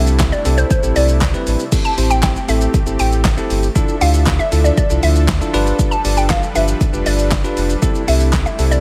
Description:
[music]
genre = dance-pop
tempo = 118 BPM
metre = 4/4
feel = straight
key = A minor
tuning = A4 = 440 Hz
[part]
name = hollow square pluck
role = melody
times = 0.0-8.8 s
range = C5 to A5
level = -23 LUFS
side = equal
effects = chorus, delay
[part]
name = bell-like tine electric piano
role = accompaniment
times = 0.0-8.8 s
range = C4 to D5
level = -24 LUFS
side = equal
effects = sidechain pumping
[part]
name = soft supersaw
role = sustained chords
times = 0.0-8.8 s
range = C3 to E5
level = -29 LUFS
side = equal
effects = sidechain pumping
[part]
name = sub bass with octave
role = bass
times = 0.0-8.8 s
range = F1 to D2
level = -18 LUFS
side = equal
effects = sidechain pumping
[part]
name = deep house drum kit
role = drums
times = 0.1-8.8 s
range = crash cymbal, handclaps, hi-hat, kick drum, shaker, snare drum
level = -21 LUFS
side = equal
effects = none
[sound]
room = little or no reverb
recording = none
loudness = -16 LUFS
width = mono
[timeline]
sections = 0.0-1.7 A section; 1.7-8.8 A section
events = drop 0.0-1.7, 1.7-8.8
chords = 0.0 C6; 1.7 Am7; 3.8 Dmadd9; 5.5 G7; 7.8 C6

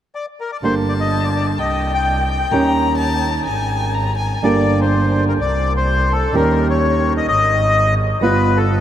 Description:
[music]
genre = tango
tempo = 126 BPM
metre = 4/4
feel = rubato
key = unclear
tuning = A4 = 440 Hz
[part]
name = bandoneon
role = melody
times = 0.2-8.8 s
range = A4 to G5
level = -19 LUFS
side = left 3 dB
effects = none
[part]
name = warm violin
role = second line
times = 0.6-4.4 s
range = G5 to Bb5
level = -24 LUFS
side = left 3 dB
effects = none
[part]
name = flamenco guitar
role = accompaniment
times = 0.6-8.8 s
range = D3 to G4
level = -20 LUFS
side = right 3 dB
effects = none
[part]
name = clear double bass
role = bass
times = 0.6-8.8 s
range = G1 to Eb2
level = -20 LUFS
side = equal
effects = none
[sound]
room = wet huge ambient reverb, RT60 8.6 s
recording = in a vast, echoing space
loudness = -15 LUFS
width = side -10 dB against mid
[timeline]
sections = 0.6-4.4 A section; 4.4-8.8 B section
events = none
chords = 0.0 N.C.; 0.6 Gm; 1.6 C5; 2.5 Eb7; 3.5 Absus2; 4.4 Gm; 5.4 Amadd11/C; 6.3 Eb7; 7.3 Ab5; 8.2 G7

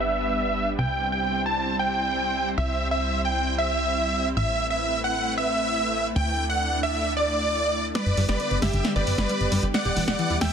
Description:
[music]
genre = uplifting trance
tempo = 134 BPM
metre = 4/4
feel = straight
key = G major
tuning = A4 = 443 Hz
[part]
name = big supersaw lead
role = melody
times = 0.0-10.5 s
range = G4 to A5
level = -25 LUFS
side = equal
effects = vintage 12-bit sampler grit, dub echo
[part]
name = wide unison pluck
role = second line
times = 0.0-10.5 s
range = D5 to A5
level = -33 LUFS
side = right 1 dB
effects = none
[part]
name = supersaw pad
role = sustained chords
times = 0.0-10.5 s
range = D3 to D5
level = -30 LUFS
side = right 1 dB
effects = none
[part]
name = plucky analog bass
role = bass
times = 0.0-10.5 s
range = E1 to D2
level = -29 LUFS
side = equal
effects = none
[part]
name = analog pluck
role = arpeggios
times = 8.0-10.4 s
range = E3 to B4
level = -31 LUFS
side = left 3 dB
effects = chorus, ping-pong delay
[part]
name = punchy analog drum machine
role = drums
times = 8.0-10.5 s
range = hi-hat, snare drum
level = -28 LUFS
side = equal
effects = none
[sound]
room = little or no reverb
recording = dense, heavily limited modern master, low-pass filter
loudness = -22 LUFS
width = side -7 dB against mid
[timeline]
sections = 0.0-8.0 A section; 8.0-10.5 B section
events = build-up 8.0-10.5; drum fill 8.0-10.5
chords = 0.0 G; 0.8 C; 4.4 Amadd9; 6.2 Dsus2; 8.0 G; 9.7 Em

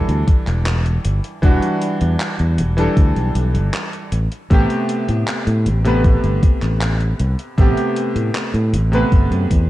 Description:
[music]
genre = vaporwave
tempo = 78 BPM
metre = 4/4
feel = straight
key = A dorian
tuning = A4 = 440 Hz
[part]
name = bright electric grand piano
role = accompaniment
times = 0.0-9.7 s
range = C3 to B4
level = -21 LUFS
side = equal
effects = lush chorus, tape echo
[part]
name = overdriven fingered electric bass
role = bass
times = 0.1-9.7 s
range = E1 to A2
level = -17 LUFS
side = equal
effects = none
[part]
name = gated 80s digital drum machine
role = drums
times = 0.1-9.7 s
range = handclaps, hi-hat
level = -28 LUFS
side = equal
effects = gated reverb, overdrive, vintage 12-bit sampler grit
[part]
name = electronic kick drum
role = drums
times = 0.3-9.7 s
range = none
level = -14 LUFS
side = equal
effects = overdrive, vintage 12-bit sampler grit
[sound]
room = light reverb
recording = dark, warm production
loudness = -15 LUFS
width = side -16 dB against mid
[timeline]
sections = 0.0-9.7 A section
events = none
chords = 0.0 Em9; 4.1 Am9

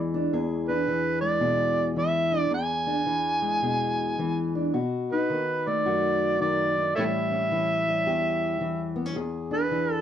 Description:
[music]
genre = acoustic country blues, solo or duo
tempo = 109 BPM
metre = 4/4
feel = swing 64% on 8ths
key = E mixolydian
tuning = A4 = 440 Hz
[part]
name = overdriven harmonica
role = melody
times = 0.0-10.0 s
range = A4 to G#5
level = -26 LUFS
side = right 2 dB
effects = plate reverb
[part]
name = fingerpicked steel-string acoustic guitar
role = accompaniment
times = 0.0-10.0 s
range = E2 to G#4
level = -27 LUFS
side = left 2 dB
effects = none
[sound]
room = moderate studio reverb, RT60 0.7 s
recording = dark, warm production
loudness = -23 LUFS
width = side -9 dB against mid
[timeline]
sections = 0.0-10.0 A section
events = none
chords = 0.0 E7; 4.7 B7; 6.9 A7; 9.2 E7

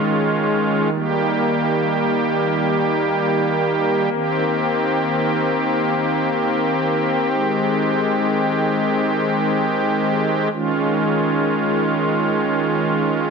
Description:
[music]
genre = hip hop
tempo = free time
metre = none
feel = none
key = Db lydian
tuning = A4 = 443 Hz
[part]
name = pipe organ, strings celeste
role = solo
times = 0.0-13.3 s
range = Eb3 to G4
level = -17 LUFS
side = equal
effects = ping-pong delay
[sound]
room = moderate lush hall reverb, RT60 2.8 s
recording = none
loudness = -17 LUFS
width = side -5 dB against mid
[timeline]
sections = 0.0-10.5 A section; 10.5-13.3 B section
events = none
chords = 0.0 Dbadd9; 0.9 Eb; 4.1 Cm7; 7.3 Abmaj7; 10.5 Dbadd9

